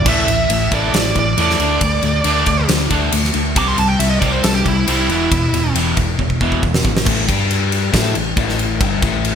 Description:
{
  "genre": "hard rock",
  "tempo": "137 BPM",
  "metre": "4/4",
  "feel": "straight",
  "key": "A minor",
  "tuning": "A4 = 440 Hz",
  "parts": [
    { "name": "bluesy overdriven lead guitar", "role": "melody", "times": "0.0-5.7 s", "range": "E4 to D6", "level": "-20 LUFS", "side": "right 3 dB", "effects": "distortion, ping-pong delay" },
    { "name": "distorted electric guitar", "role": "riff", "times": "0.0-7.0 s", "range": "E2 to D4", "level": "-22 LUFS", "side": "right 8 dB", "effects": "distortion" },
    { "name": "overdriven semi-hollow guitar", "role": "riff", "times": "0.0-9.3 s", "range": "E2 to A4", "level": "-20 LUFS", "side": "left 10 dB", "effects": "none" },
    { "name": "hollow-body short-scale fingered electric bass", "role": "bass", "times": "0.0-9.3 s", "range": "E1 to A2", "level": "-21 LUFS", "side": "equal", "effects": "none" },
    { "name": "big rock drum kit", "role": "drums", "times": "0.1-9.3 s", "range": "crash cymbal, kick drum, ride cymbal, snare drum", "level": "-18 LUFS", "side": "equal", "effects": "gated reverb" }
  ],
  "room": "moderate plate reverb, RT60 1.2 s, studio reverb",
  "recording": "bright 1980s-style digital production",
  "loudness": "-14 LUFS",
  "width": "side -8 dB against mid",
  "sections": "0.0-7.1 A section; 7.1-9.3 B section",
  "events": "lead electric guitar solo 0.0-7.1; drum fill 6.2-7.1",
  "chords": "0.1 A5; 1.6 D5; 3.6 C5; 5.1 E5; 7.1 A5; 7.3 G5; 7.9 A5"
}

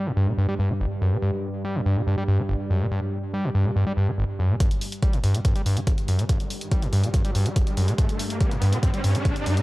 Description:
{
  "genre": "driving peak-time techno",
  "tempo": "142 BPM",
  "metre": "4/4",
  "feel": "straight",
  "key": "unclear",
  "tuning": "A4 = 439 Hz",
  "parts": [
    { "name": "screaming distorted acid line", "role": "riff", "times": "0.0-9.6 s", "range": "G1 to G3", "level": "-23 LUFS", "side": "equal", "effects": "distortion, chorus, sidechain pumping" },
    { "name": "deep dark ambient pad", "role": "drone", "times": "0.0-9.6 s", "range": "G2 to G3", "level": "-31 LUFS", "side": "right 1 dB", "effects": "chorus, built-in reverb, sidechain pumping" },
    { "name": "electronic hi-hat", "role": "drums", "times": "4.6-9.6 s", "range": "none", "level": "-35 LUFS", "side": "equal", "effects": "overdrive, low-pass filter on hats, low-pass filter on snare, low-pass filter on room" },
    { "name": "electronic kick drum", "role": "drums", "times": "4.6-9.3 s", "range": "none", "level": "-22 LUFS", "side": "equal", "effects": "overdrive" },
    { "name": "riser", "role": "sound effects", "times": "6.4-9.6 s", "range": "none", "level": "-33 LUFS", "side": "equal", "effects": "none" }
  ],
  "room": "light reverb",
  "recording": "dry, gritty hardware recording, transformer saturation, cassette tape",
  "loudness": "-21 LUFS",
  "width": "side -19 dB against mid",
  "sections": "0.0-4.6 A section; 4.6-9.6 B section",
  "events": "build-up 4.6-9.6; riser 6.4-9.6",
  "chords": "none"
}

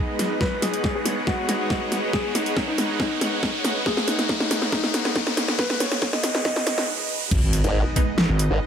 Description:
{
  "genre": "heavy wobble dubstep",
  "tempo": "139 BPM",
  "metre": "4/4",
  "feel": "half-time",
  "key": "G# minor",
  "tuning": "A4 = 440 Hz",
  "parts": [
    { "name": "dark grand piano", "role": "melody", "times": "0.0-6.9 s", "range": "D#4 to D#5", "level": "-29 LUFS", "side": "left 1 dB", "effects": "tape echo" },
    { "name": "supersaw pad", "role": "sustained chords", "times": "0.0-8.7 s", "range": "G#3 to F#5", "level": "-31 LUFS", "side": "equal", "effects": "sidechain pumping" },
    { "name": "riser and impact", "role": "sound effects", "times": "0.0-8.7 s", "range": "none", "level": "-28 LUFS", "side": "equal", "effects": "none" },
    { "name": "granular cloud pad", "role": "texture", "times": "0.0-6.9 s", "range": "G#4 to B5", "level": "-33 LUFS", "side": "right 1 dB", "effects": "built-in reverb, sidechain pumping" },
    { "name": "dubstep drum kit", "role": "drums", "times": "0.2-8.5 s", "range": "crash cymbal, hi-hat, snare drum", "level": "-24 LUFS", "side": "equal", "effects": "overdrive" },
    { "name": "electronic kick drum", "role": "drums", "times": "0.4-8.1 s", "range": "none", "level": "-26 LUFS", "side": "equal", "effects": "overdrive" },
    { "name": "wobble bass", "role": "bass", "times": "7.3-8.5 s", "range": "G#1", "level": "-21 LUFS", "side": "equal", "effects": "chorus, overdrive" },
    { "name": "formant-sweep wobble bass", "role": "bass", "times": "7.6-8.6 s", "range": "G#1", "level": "-20 LUFS", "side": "equal", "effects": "chorus, overdrive" },
    { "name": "orchestra-hit-like synth stab", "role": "stabs", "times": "8.0-8.2 s", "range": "G#3 to D#4", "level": "-29 LUFS", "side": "right 4 dB", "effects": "built-in reverb, tape echo" }
  ],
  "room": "light reverb",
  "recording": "high-pass filter",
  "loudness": "-20 LUFS",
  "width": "side -8 dB against mid",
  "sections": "0.0-7.3 A section; 7.3-8.7 B section",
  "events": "build-up 0.0-7.3; drum fill 0.0-6.9; riser 0.0-7.3; filter sweep 0.0-7.3; stop 6.9-7.3; drop 7.3-8.7; impact 7.3-8.7",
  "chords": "0.0 G#m"
}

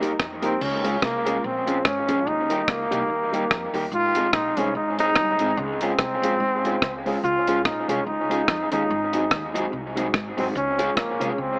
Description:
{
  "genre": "ska",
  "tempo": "145 BPM",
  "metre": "4/4",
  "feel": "swing 57% on 8ths",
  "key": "unclear",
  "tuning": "A4 = 440 Hz",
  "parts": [
    { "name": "warm trombone", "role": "melody", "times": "0.0-11.6 s", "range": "Ab3 to F4", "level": "-26 LUFS", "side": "equal", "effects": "dub echo" },
    { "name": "electric guitar at the edge of break-up", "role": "accompaniment", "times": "0.0-11.3 s", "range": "Gb3 to Bb4", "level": "-32 LUFS", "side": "equal", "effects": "dub echo" },
    { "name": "dark upright piano", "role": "stabs", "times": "0.0-11.3 s", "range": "G3 to Ab4", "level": "-33 LUFS", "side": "equal", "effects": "dub echo" },
    { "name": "upright bass", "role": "bass", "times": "0.0-11.6 s", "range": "G1 to F2", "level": "-38 LUFS", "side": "equal", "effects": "none" },
    { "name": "deep reggae drum kit", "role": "drums", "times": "0.0-11.3 s", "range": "crash cymbal, hi-hat, kick drum, rim click", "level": "-28 LUFS", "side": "equal", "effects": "none" },
    { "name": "semi-hollow electric guitar", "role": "riff", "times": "0.2-11.5 s", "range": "G2 to F3", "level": "-42 LUFS", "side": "equal", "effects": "none" }
  ],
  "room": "light reverb",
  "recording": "AM radio sound",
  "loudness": "-24 LUFS",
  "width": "mono",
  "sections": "0.6-11.6 A section",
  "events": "none",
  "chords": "0.0 Eb; 0.6 Db; 2.3 Eb; 3.9 Ab; 5.6 Db; 8.9 Ab7; 10.6 Db"
}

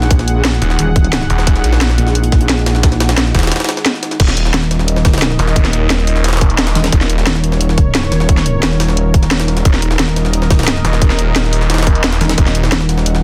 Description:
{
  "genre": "dark technical drum and bass",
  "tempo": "176 BPM",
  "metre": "4/4",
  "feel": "straight",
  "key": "Eb minor",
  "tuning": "A4 = 441 Hz",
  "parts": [
    { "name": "dark analog pad", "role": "sustained chords", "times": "0.0-13.2 s", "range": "Eb4 to Gb5", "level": "-24 LUFS", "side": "equal", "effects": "chorus, sidechain pumping" },
    { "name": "metallic wobble bass", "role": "bass", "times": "0.0-13.2 s", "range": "Eb1 to Bb1", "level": "-17 LUFS", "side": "equal", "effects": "chorus" },
    { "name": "jungle sampler-style drum kit", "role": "drums", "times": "0.0-13.2 s", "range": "hi-hat, snare drum", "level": "-24 LUFS", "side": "equal", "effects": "high-pass filter on hats, high-pass filter on snare" },
    { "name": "drum and bass drum kit", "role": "drums", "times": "0.1-13.1 s", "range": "crash cymbal, hi-hat, snare drum", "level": "-20 LUFS", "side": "equal", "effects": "none" },
    { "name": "electronic kick drum", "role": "drums", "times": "0.1-12.4 s", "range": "none", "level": "-14 LUFS", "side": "equal", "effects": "none" },
    { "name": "snarling distorted saw bass", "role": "bass", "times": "0.6-7.3, 9.7-12.7 s", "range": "Eb1 to Bb1", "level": "-17 LUFS", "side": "equal", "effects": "distortion, overdrive" }
  ],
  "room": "little or no reverb",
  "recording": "dense, heavily limited modern master",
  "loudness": "-13 LUFS",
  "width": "mono",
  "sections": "0.0-4.2 A section; 4.2-13.2 A section",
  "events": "drop 0.0-4.2, 4.2-13.2; break 3.5-4.2",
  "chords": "0.0 Ebm"
}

